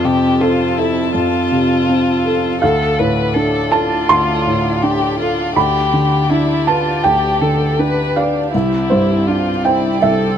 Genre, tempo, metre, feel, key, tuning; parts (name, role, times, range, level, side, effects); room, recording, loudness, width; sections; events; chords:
neoclassical piano and strings; 81 BPM; 4/4; rubato; D dorian; A4 = 441 Hz
dark violin; melody; 0.0-10.4 s; D4 to B4; -18 LUFS; left 3 dB
felt-muted upright piano; accompaniment; 0.0-10.4 s; C2 to C6; -15 LUFS; right 1 dB
warm chamber string section; sustained chords; 0.0-10.4 s; C4 to A5; -25 LUFS; right 2 dB
little or no reverb; close, detailed microphones; -13 LUFS; side -9 dB against mid
0.0-10.4 A section
0.0 F; 2.6 Dm; 5.6 G/D; 8.5 Cadd9